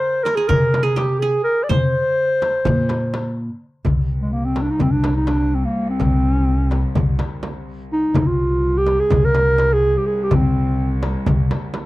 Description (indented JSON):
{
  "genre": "Turkish makam ensemble",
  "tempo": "251 BPM (eighths)",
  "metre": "9/8",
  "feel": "straight",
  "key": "unclear",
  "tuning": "A4 = 441 Hz",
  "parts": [
    { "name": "dark clarinet", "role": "melody", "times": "0.0-11.0 s", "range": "Ab3 to D5", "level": "-19 LUFS", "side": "equal", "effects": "none" },
    { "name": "qanun", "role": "second line", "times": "0.0-3.3 s", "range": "G4 to C5", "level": "-28 LUFS", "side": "right 3 dB", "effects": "none" },
    { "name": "darbuka", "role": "percussion", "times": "0.3-11.9 s", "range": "none", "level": "-25 LUFS", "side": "left 3 dB", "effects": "none" },
    { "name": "frame drum", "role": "percussion", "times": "0.3-11.9 s", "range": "none", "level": "-26 LUFS", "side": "right 2 dB", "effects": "none" },
    { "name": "upright bass", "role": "bass", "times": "0.5-11.5 s", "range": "C2 to C3", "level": "-20 LUFS", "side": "equal", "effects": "none" },
    { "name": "rich studio cello section", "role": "drone", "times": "3.9-11.9 s", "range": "C2", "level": "-29 LUFS", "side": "left 1 dB", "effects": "none" }
  ],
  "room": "little or no reverb",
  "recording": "dry, close 1970s-style studio recording",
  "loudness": "-16 LUFS",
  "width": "side -18 dB against mid",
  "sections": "0.0-3.9 A section; 3.9-11.9 B section",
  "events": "none",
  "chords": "none"
}